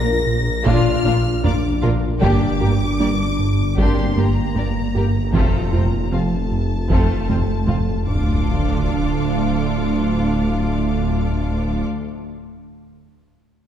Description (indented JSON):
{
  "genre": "cinematic, hybrid orchestral and electronic film score",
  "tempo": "77 BPM",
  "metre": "4/4",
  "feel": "straight",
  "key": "D minor",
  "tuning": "A4 = 440 Hz",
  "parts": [
    { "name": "clear chamber violin section", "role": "melody", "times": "0.0-11.8 s", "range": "A5 to Bb6", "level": "-31 LUFS", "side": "left 3 dB", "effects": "none" },
    { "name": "mellow French horn section", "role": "sustained chords", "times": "0.0-11.8 s", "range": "Bb2 to Bb4", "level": "-26 LUFS", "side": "left 2 dB", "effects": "none" },
    { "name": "soft round pluck", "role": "arpeggios", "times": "0.0-7.9 s", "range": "F3 to Bb4", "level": "-28 LUFS", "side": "right 3 dB", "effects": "none" },
    { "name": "round analog bass", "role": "riff", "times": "0.0-7.9 s", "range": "F2 to Bb3", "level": "-23 LUFS", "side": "right 1 dB", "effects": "none" },
    { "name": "phased detuned saw bass", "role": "bass", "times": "0.0-11.8 s", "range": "D1 to Bb1", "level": "-24 LUFS", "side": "equal", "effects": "phaser" },
    { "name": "warm grand piano", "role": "texture", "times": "0.0-8.5 s", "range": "G3 to Bb4", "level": "-39 LUFS", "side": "left 1 dB", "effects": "none" },
    { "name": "rich symphonic violin section", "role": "second line", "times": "0.7-11.8 s", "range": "A3 to F5", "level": "-29 LUFS", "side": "left 2 dB", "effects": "none" },
    { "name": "rich symphonic viola section", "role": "accompaniment", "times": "0.7-11.8 s", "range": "Bb3 to G4", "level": "-28 LUFS", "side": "right 1 dB", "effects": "none" },
    { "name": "rich symphonic double bass section", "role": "bass", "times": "0.7-11.8 s", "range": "F1 to D2", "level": "-26 LUFS", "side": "right 2 dB", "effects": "none" },
    { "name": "warm symphonic cello section", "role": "bass", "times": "0.7-11.8 s", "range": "D2 to Bb2", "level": "-26 LUFS", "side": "right 2 dB", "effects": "none" },
    { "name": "taiko ensemble", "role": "drums", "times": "0.7-9.6 s", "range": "none", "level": "-23 LUFS", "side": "equal", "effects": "none" },
    { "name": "sub drop", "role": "sound effects", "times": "8.1-11.9 s", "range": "none", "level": "-24 LUFS", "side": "equal", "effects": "none" }
  ],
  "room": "wet concert hall reverb, RT60 2.1 s",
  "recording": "heard from further back in the room",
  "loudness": "-16 LUFS",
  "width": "side -9 dB against mid",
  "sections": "0.0-8.5 A section; 8.5-11.6 B section",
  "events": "drum fill 7.3-8.5; impact 8.5-11.6",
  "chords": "0.0 Bb; 2.2 Gm; 5.3 F; 8.1 Dm"
}